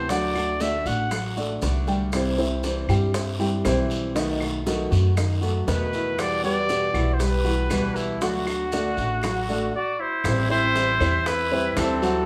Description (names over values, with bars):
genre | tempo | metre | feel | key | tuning
latin, Cuban son and guajira | 118 BPM | 4/4 | straight | unclear | A4 = 440 Hz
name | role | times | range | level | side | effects
warm trumpet | melody | 0.0-1.4, 5.7-12.3 s | E4 to F#5 | -28 LUFS | equal | none
nylon-string guitar | accompaniment | 0.0-12.3 s | B2 to F#4 | -31 LUFS | equal | none
upright bass | bass | 0.0-12.3 s | A1 to G2 | -29 LUFS | equal | none
dark baby grand piano | arpeggios | 0.1-12.2 s | D#3 to G5 | -30 LUFS | equal | none
bongos | percussion | 0.1-12.0 s | none | -37 LUFS | equal | none
guiro | percussion | 0.1-12.3 s | none | -40 LUFS | equal | none
maracas | percussion | 0.1-12.3 s | none | -43 LUFS | equal | none
claves | percussion | 0.4-12.0 s | none | -44 LUFS | equal | none
silver concert flute | second line | 9.7-12.3 s | C4 to F#4 | -32 LUFS | equal | none
room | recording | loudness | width
moderate large studio reverb, RT60 1.2 s | band playing live in one room | -24 LUFS | mono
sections
0.0-10.2 A section; 10.2-12.3 B section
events
none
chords
0.1 D; 2.1 C; 4.2 B7; 6.2 Emadd9; 8.2 D; 10.2 Am7